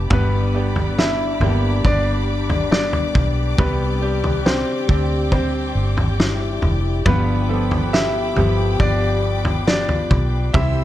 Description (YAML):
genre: pop ballad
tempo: 69 BPM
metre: 4/4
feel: straight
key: unclear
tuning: A4 = 440 Hz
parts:
  - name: bright upright piano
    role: accompaniment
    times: 0.0-10.8 s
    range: G2 to A4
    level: -28 LUFS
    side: right 5 dB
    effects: none
  - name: rich studio string section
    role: sustained chords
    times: 0.0-10.8 s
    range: G4 to E6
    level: -30 LUFS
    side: left 2 dB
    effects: none
  - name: fingerpicked steel-string acoustic guitar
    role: arpeggios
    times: 0.0-10.8 s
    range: G2 to G4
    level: -29 LUFS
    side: left 6 dB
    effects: none
  - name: vintage muted fingered electric bass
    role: bass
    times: 0.0-10.8 s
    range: F1 to D2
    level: -21 LUFS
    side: equal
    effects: none
  - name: bright concert grand piano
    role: melody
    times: 0.1-10.8 s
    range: B3 to E5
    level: -24 LUFS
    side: equal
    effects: none
  - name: mellow French horn section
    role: second line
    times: 0.1-10.8 s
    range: D4 to G4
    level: -28 LUFS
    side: left 6 dB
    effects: none
  - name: loose indie drum kit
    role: drums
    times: 0.1-10.7 s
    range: kick drum, snare drum, toms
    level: -20 LUFS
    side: equal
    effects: none
room: small room ambience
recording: dark, warm production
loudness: -16 LUFS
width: side -13 dB against mid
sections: 0.0-10.8 A section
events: none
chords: 0.1 G; 3.6 Csus2; 7.1 G7